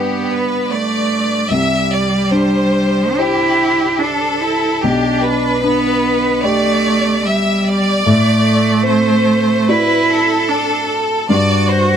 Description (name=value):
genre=neoclassical piano and strings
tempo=74 BPM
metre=4/4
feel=rubato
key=G major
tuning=A4 = 440 Hz
part: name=clear chamber violin section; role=melody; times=0.0-12.0 s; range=G4 to E5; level=-17 LUFS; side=equal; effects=none
part: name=rich cello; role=second line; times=0.0-12.0 s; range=G3 to F#4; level=-16 LUFS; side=right 3 dB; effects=none
part: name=dark grand piano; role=accompaniment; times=0.0-12.0 s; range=B1 to F#5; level=-19 LUFS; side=left 2 dB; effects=none
room=light reverb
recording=close, detailed microphones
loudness=-12 LUFS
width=side -8 dB against mid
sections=0.0-12.0 A section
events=none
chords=0.0 Gmaj7; 1.5 Csus2; 4.8 G/B; 8.1 D7/A; 11.3 Gmaj7(no3)